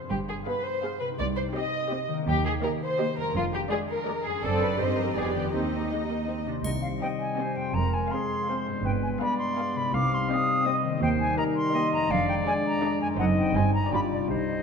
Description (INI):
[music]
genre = cinematic, playful, whimsical film cue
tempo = 165 BPM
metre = 3/4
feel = straight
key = C minor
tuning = A4 = 440 Hz
[part]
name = concert harp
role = arpeggios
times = 0.0-14.6 s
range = F2 to A4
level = -34 LUFS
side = left 7 dB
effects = none
[part]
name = muted studio violin section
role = second line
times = 0.1-14.2 s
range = Eb4 to Eb5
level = -32 LUFS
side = left 1 dB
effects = none
[part]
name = muted studio cello section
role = bass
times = 0.1-14.6 s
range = C2 to C3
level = -31 LUFS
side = right 4 dB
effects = none
[part]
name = muted studio double bass section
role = bass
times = 0.1-14.6 s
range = F1 to Eb2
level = -32 LUFS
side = right 5 dB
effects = none
[part]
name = muted studio violin section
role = melody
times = 0.5-14.2 s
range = C5 to F5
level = -38 LUFS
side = left 3 dB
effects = none
[part]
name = muted studio viola section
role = accompaniment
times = 0.5-14.2 s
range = Ab3 to A4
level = -34 LUFS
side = right 2 dB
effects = none
[part]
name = silver concert flute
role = second line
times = 6.6-14.6 s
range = D5 to Eb6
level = -29 LUFS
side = equal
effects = none
[part]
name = mellow French horn section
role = sustained chords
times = 6.6-14.6 s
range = G3 to F4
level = -31 LUFS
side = left 4 dB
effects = none
[part]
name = triangle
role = percussion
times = 6.6-7.3 s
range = none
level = -44 LUFS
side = left 6 dB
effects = none
[part]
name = clear clarinet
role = second line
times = 7.0-14.6 s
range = Ab4 to F5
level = -33 LUFS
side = equal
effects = none
[sound]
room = wet scoring stage reverb, RT60 2.0 s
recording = none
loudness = -24 LUFS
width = side -6 dB against mid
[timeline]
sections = 0.0-6.6 A section; 6.6-14.6 A section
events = none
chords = 0.1 G7b9; 1.2 Cm; 2.3 Eb; 3.3 Ddim/F; 4.4 D7/F#; 4.8 Cm/G; 5.2 G7/F; 5.5 Cm/Eb; 6.6 Cm; 7.7 Fm; 8.8 G7b9; 9.9 Cm; 11.0 Eb; 12.1 Ddim/F; 13.2 F#dim7; 13.6 Cm/G